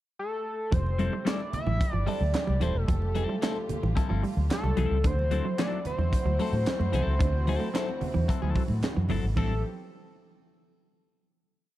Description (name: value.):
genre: funk.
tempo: 111 BPM.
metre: 4/4.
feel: straight.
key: unclear.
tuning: A4 = 440 Hz.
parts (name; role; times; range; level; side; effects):
fat analog lead; melody; 0.2-9.6 s; A4 to E5; -33 LUFS; equal; chorus.
dark studio string section; sustained chords; 0.7-9.6 s; A3 to G4; -42 LUFS; left 1 dB; none.
semi-hollow electric guitar; riff; 0.7-9.5 s; E3 to D4; -36 LUFS; right 5 dB; spring reverb.
vintage muted fingered electric bass; bass; 0.7-9.6 s; D#1 to A2; -27 LUFS; equal; none.
tight funk drum kit; drums; 0.7-9.5 s; handclaps, hi-hat, kick drum, snare drum, splash cymbal; -30 LUFS; equal; none.
congas; percussion; 0.7-9.6 s; none; -36 LUFS; right 4 dB; none.
clean electric guitar; accompaniment; 1.0-9.5 s; F#3 to A4; -34 LUFS; left 6 dB; phaser.
room: light reverb, studio reverb.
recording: dark, warm production.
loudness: -25 LUFS.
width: side -14 dB against mid.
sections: 0.0-0.7 pickup bar; 0.7-9.4 bridge; 9.4-11.5 final chord.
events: none.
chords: 0.0 N.C.; 0.7 Fmaj9; 5.0 D9; 9.4 Am7.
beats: 0.18 | 0.72 1.26 1.80 2.34 | 2.88 3.42 3.96 4.50 | 5.04 5.58 6.12 6.67 | 7.21 7.75 8.29 8.83 | 9.37.